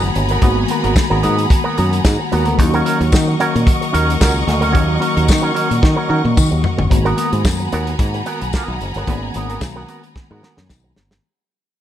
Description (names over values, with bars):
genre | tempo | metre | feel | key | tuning
disco | 111 BPM | 4/4 | straight | G# minor | A4 = 440 Hz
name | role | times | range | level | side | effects
electric guitar with an envelope filter | accompaniment | 0.0-11.2 s | B3 to C#5 | -22 LUFS | right 3 dB | tremolo
mellow tine electric piano | accompaniment | 0.0-11.3 s | D#3 to F#4 | -22 LUFS | left 1 dB | medium stereo tremolo
clear studio string section | sustained chords | 0.0-11.2 s | A#4 to C#6 | -23 LUFS | left 1 dB | none
fingered electric bass | bass | 0.0-11.2 s | F#1 to D#3 | -18 LUFS | equal | none
warm soul drum kit | drums | 0.0-11.2 s | hi-hat, kick drum, snare drum, toms | -17 LUFS | equal | none
tambourine | percussion | 1.0-10.8 s | none | -29 LUFS | left 8 dB | none
room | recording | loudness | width
little or no reverb | none | -14 LUFS | side -11 dB against mid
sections
0.0-6.9 A section; 6.9-11.2 B section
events
drum fill 5.8-6.9, 10.2-11.2; fade-out 6.9-11.2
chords
0.0 G#m9; 2.6 D#m7; 6.9 G#m9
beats
| 0.42 0.96 1.50 2.04 | 2.58 3.13 3.67 4.21 | 4.75 5.29 5.83 6.37 | 6.91 7.46 8.00 8.54 | 9.08 9.62 10.16 10.70